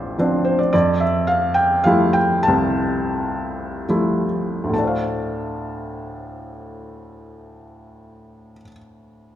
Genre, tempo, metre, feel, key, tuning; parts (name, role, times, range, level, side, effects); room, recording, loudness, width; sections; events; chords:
classical, lyrical solo piano; 66-112 BPM; 3/4; rubato; D minor; A4 = 443 Hz
felt-muted upright piano; solo; 0.0-9.4 s; A1 to A5; -18 LUFS; equal
moderate concert hall reverb, RT60 2.1 s; minimal, uncompressed stereo recording; -17 LUFS; side -11 dB against mid
0.0-4.7 A section; 4.7-9.4 B section
slowing down 0.7-4.7
0.0 Dm7; 0.7 Fmaj9; 4.7 Dm7